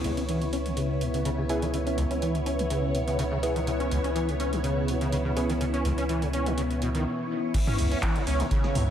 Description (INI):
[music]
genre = acid house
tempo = 124 BPM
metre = 4/4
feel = swing 53% on 16ths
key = C# minor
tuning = A4 = 440 Hz
[part]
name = string machine, full ensemble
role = sustained chords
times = 0.0-8.9 s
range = B3 to C#5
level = -30 LUFS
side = equal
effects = phaser, ensemble chorus, vintage 12-bit sampler grit, sidechain pumping
[part]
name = acid bass, saw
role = riff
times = 0.0-8.8 s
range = C#2 to C#4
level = -30 LUFS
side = equal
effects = overdrive, ensemble chorus, tape echo
[part]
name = saturated sub bass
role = bass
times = 0.0-8.9 s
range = C#2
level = -30 LUFS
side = equal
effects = sidechain pumping
[part]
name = electro analog drum machine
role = drums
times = 0.0-8.9 s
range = crash cymbal, handclaps, hi-hat, snare drum, toms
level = -35 LUFS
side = right 1 dB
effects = none
[part]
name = band-passed chord stab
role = stabs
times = 1.5-5.5 s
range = B3 to G#4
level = -35 LUFS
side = right 1 dB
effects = chorus, phaser, cassette tape, tape echo
[part]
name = electronic kick drum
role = drums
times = 7.5-8.6 s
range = none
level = -27 LUFS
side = equal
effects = none
[sound]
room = moderate plate reverb, RT60 1.6 s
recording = dreamy mix soaked in reverb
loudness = -25 LUFS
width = side -9 dB against mid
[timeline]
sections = 0.0-7.5 A section; 7.5-8.9 B section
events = break 7.1-7.5; drop 7.5-8.9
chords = 0.0 C#m7